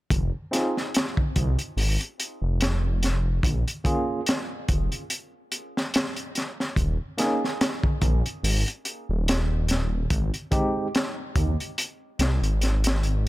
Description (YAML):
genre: trip hop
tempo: 72 BPM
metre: 4/4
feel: swing 56% on 16ths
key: F minor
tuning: A4 = 440 Hz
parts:
  - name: dark detuned saw bass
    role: bass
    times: 0.1-13.3 s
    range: Eb1 to Eb2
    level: -24 LUFS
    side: equal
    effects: none
  - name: crunchy breakbeat drum kit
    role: drums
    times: 0.1-13.2 s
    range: hi-hat, kick drum, snare drum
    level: -26 LUFS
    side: equal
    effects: none
  - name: tine electric piano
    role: accompaniment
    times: 0.5-10.9 s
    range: Ab3 to Ab4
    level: -30 LUFS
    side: right 1 dB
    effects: tremolo, low-pass filter, tape echo
room: little or no reverb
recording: none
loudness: -23 LUFS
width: side -18 dB against mid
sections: 0.1-13.3 A section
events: none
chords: 0.1 Fm; 3.4 Bbm7; 6.8 Ebsus4; 10.1 Ab